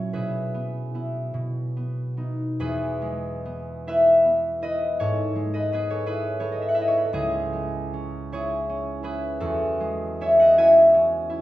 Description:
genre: classical, solo harp piece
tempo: 46-56 BPM (dotted quarters)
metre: 6/8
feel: rubato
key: E major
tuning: A4 = 443 Hz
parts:
  - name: concert harp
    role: solo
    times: 0.0-11.4 s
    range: C#2 to G#5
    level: -21 LUFS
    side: equal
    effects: none
room: wet recital hall reverb, RT60 1.4 s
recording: recorded in a church or concert hall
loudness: -20 LUFS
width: side -15 dB against mid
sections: 0.0-2.6 A section; 2.6-11.4 B section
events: none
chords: 0.1 E/B; 1.3 B; 2.6 E; 5.0 E/G#; 7.2 C#m; 9.4 C#m/E

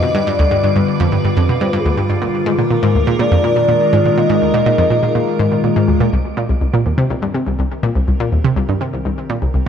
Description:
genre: ambient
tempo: 123 BPM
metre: 4/4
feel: straight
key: C minor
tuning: A4 = 440 Hz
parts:
  - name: soft octave-layered synth lead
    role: melody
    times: 0.0-5.6 s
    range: Ab4 to Eb5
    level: -19 LUFS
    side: left 1 dB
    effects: chorus, tremolo, ping-pong delay
  - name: evolving wavetable pad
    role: sustained chords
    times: 0.0-9.7 s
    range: D3 to B4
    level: -19 LUFS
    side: left 2 dB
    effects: phaser, built-in reverb
  - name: analog pluck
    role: riff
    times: 0.0-9.6 s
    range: C2 to C3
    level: -16 LUFS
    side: right 1 dB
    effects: chorus, ping-pong delay
  - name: wind-like tuned noise texture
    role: texture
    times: 0.0-6.1 s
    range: D6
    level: -32 LUFS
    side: right 4 dB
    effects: built-in reverb
room: wet plate reverb, RT60 2.9 s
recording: cassette tape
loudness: -13 LUFS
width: side -8 dB against mid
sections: 0.0-6.1 A section; 6.1-9.7 B section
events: fade-in on ambient pad 6.1-9.7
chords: 0.0 G7; 2.2 Bb7sus4; 6.1 Cm7

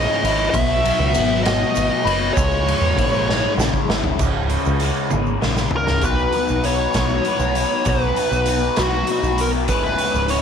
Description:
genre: psychedelic rock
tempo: 66 BPM (dotted quarters)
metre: 6/8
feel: straight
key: unclear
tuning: A4 = 439 Hz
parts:
  - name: fuzz lead guitar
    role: melody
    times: 0.0-10.4 s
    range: F#4 to E5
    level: -21 LUFS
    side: right 1 dB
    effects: wah, distortion, slapback echo
  - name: hand-pumped harmonium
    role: sustained chords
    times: 0.0-10.4 s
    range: G#3 to A#5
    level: -29 LUFS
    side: right 16 dB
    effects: none
  - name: crunchy overdriven guitar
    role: riff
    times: 0.0-10.4 s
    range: C#2 to B4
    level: -22 LUFS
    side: left 11 dB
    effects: phaser
  - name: deep dub picked electric bass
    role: bass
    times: 0.0-10.4 s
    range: C#1 to E2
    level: -23 LUFS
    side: right 2 dB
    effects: none
  - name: raw garage drum kit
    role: drums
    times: 0.2-10.4 s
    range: crash cymbal, hi-hat, kick drum, ride cymbal, snare drum, toms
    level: -23 LUFS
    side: right 2 dB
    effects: none
  - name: egg shaker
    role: percussion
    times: 0.5-10.4 s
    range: none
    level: -37 LUFS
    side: right 19 dB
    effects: none
room: light reverb, small room ambience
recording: 1960s-style stereo with parts hard left and right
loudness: -16 LUFS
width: side -7 dB against mid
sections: 0.0-4.2 A section; 4.2-6.0 B section; 6.0-10.4 C section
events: drum fill 3.3-4.2, 5.1-6.0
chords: 0.0 C#m; 0.5 Bsus2; 2.4 C#m; 6.0 B; 9.7 C#m7

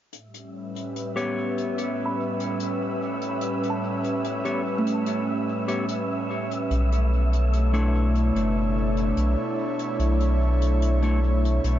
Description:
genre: ambient dub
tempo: 73 BPM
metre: 4/4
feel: straight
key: unclear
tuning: A4 = 439 Hz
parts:
  - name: airy breathy pad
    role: sustained chords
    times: 0.1-11.8 s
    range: A2 to C#5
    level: -27 LUFS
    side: equal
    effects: chorus
  - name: hi-hat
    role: drums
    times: 0.1-11.8 s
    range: none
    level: -43 LUFS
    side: left 4 dB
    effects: dub echo
  - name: wind-like tuned noise texture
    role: texture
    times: 0.5-11.8 s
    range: E5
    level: -35 LUFS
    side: right 1 dB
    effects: built-in reverb
  - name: mellow electric guitar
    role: stabs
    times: 1.2-11.2 s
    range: A3 to C#5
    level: -31 LUFS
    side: left 3 dB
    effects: spring reverb, low-pass filter, dub echo
  - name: kalimba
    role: arpeggios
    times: 2.1-7.6 s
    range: A3 to B5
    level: -32 LUFS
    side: right 3 dB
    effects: low-pass filter, dub echo
  - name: warm sub bass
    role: bass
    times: 6.7-11.8 s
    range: F#1 to B1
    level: -21 LUFS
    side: equal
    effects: none
room: light reverb, small room ambience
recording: nothing above 7.5 kHz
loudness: -22 LUFS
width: side -12 dB against mid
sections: 0.1-11.8 A section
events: none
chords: 0.1 A9; 6.7 Bm11

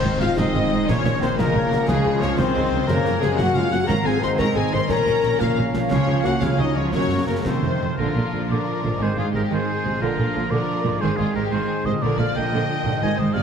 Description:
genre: cinematic, heroic adventure film score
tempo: 119 BPM (dotted quarters)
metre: 6/8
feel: straight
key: Db major, Bb mixolydian from 8.0 s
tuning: A4 = 440 Hz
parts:
  - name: warm symphonic violin section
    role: melody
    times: 0.0-13.4 s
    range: F4 to C6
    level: -30 LUFS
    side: left 5 dB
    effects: none
  - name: clear oboe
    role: second line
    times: 0.0-13.4 s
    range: Ab4 to C6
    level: -29 LUFS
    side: right 2 dB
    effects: none
  - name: warm symphonic violin section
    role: second line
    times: 0.0-13.4 s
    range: Bb3 to C6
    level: -32 LUFS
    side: left 3 dB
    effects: none
  - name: clear symphonic viola section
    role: accompaniment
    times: 0.0-13.4 s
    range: C3 to Eb4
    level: -28 LUFS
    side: right 2 dB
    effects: none
  - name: bright trombone section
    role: sustained chords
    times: 0.0-7.8 s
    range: Db3 to Db4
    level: -30 LUFS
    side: right 4 dB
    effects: none
  - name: mellow French horn section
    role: sustained chords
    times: 0.0-13.4 s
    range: D3 to C5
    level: -26 LUFS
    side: left 4 dB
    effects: none
  - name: concert harp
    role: arpeggios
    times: 0.0-13.4 s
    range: F2 to Db6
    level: -30 LUFS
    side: left 8 dB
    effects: none
  - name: clear symphonic double bass section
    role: bass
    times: 0.0-13.4 s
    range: F1 to Db2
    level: -27 LUFS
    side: right 4 dB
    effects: none
  - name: rich studio cello section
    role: bass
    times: 0.0-13.4 s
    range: F2 to Db3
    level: -27 LUFS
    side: right 3 dB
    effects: none
  - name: concert snare drum, concert bass drum and clash cymbals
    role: drums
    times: 0.2-7.6 s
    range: none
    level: -29 LUFS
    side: equal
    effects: none
  - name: small flute group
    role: second line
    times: 0.4-7.7 s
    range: A4 to Gb5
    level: -32 LUFS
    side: right 4 dB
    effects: none
  - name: timpani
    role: percussion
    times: 1.9-6.4 s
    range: Ab2 to Db3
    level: -29 LUFS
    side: left 1 dB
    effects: none
room: wet scoring stage reverb, RT60 1.9 s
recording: heavily compressed radio sound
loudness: -18 LUFS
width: side -7 dB against mid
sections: 0.0-8.0 A section; 8.0-13.4 B section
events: none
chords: 0.0 Ab; 0.9 Bbm; 1.9 Db; 2.9 Gb; 3.9 Ab; 4.9 Bbm; 5.9 Db; 6.9 Gb; 7.4 F7; 8.0 Bb; 9.0 Ab; 10.0 Bb; 11.0 Ab; 12.0 Bb

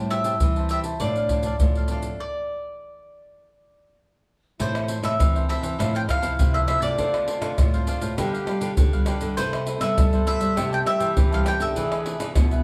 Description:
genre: samba and choro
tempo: 100 BPM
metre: 4/4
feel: straight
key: A minor from 4.6 s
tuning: A4 = 440 Hz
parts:
  - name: warm trombone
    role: second line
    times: 0.0-12.6 s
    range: C4 to A4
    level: -35 LUFS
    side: equal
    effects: none
  - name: cavaquinho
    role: accompaniment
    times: 0.0-12.6 s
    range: D4 to A5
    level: -35 LUFS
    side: equal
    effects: none
  - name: nylon-string guitar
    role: accompaniment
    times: 0.0-12.6 s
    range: G2 to G#4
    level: -35 LUFS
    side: equal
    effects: none
  - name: nylon-string guitar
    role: bass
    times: 0.0-12.6 s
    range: A2 to G3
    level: -32 LUFS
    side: equal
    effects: none
  - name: bowl-back mandolin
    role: melody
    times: 0.1-12.6 s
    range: C5 to G5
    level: -29 LUFS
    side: equal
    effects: none
  - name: pandeiro, maracas, surdo and tamborim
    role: percussion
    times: 0.1-12.6 s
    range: none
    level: -26 LUFS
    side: equal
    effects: none
room: wet large studio reverb, RT60 1.1 s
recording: band playing live in one room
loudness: -23 LUFS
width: mono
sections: 0.0-4.6 A section; 4.6-12.6 B section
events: stop 2.2-4.6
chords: 0.0 Am7; 1.0 F6/A; 2.2 N.C.; 4.6 Am; 5.8 Fmaj7/A; 7.0 Dm7; 8.2 G7/D; 9.4 Cmaj7; 10.6 Am7/C; 11.8 E7

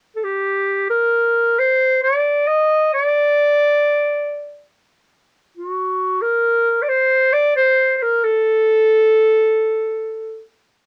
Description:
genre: klezmer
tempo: 68 BPM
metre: 3/4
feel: straight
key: D phrygian dominant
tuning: A4 = 440 Hz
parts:
  - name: warm clarinet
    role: solo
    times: 0.2-10.4 s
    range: F#4 to Eb5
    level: -17 LUFS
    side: equal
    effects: cassette tape
room: light reverb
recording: home recording on cassette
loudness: -17 LUFS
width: mono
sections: 0.0-5.6 A section; 5.6-10.9 A section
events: none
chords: none

